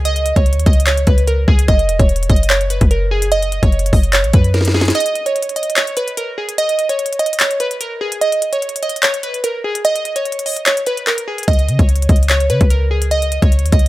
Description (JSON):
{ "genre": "hip hop, trap", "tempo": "147 BPM", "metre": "4/4", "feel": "half-time", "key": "unclear", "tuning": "A4 = 440 Hz", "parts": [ { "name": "clean 808-style bass", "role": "bass", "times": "0.0-4.9, 11.5-13.9 s", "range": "E1 to C#3", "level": "-15 LUFS", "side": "equal", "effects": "none" }, { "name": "glassy digital keys", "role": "melody", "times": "0.1-13.9 s", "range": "G#4 to D#5", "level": "-18 LUFS", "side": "right 2 dB", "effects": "chorus" }, { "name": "trap drum kit", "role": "drums", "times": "0.1-13.9 s", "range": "handclaps, hi-hat, kick drum, snare drum", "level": "-15 LUFS", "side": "equal", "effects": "none" } ], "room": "little or no reverb", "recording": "none", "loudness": "-13 LUFS", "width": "side -16 dB against mid", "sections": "0.0-13.9 A section", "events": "drum fill 4.5-4.9; break 4.9-11.5", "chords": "0.0 Badd9/C# (rootless); 1.7 F#5; 4.9 N.C.; 11.5 Badd9/C# (rootless)", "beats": "| 0.05 0.46 0.87 1.27 | 1.68 2.09 2.50 2.91 | 3.32 3.72 4.13 4.54 | 4.95 5.36 5.76 6.17 | 6.58 6.99 7.40 7.81 | 8.21 8.62 9.03 9.44 | 9.85 10.26 10.66 11.07 | 11.48 11.89 12.30 12.70 | 13.11 13.52" }